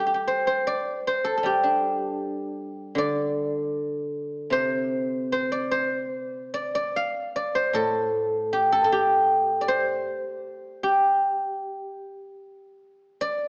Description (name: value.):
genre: chinese traditional, Chinese solo plucked strings.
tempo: 77 BPM.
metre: 2/4.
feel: rubato.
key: G shang mode.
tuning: A4 = 440 Hz.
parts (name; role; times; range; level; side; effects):
guzheng; solo; 0.0-13.5 s; A2 to F5; -26 LUFS; equal; none.
room: wet concert hall reverb, RT60 1.8 s.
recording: worn, warbling old tape, cassette tape, warbly pitch drift, small speaker sound.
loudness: -25 LUFS.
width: mono.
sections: 0.0-12.4 A section; 12.4-13.5 B section.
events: none.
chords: none.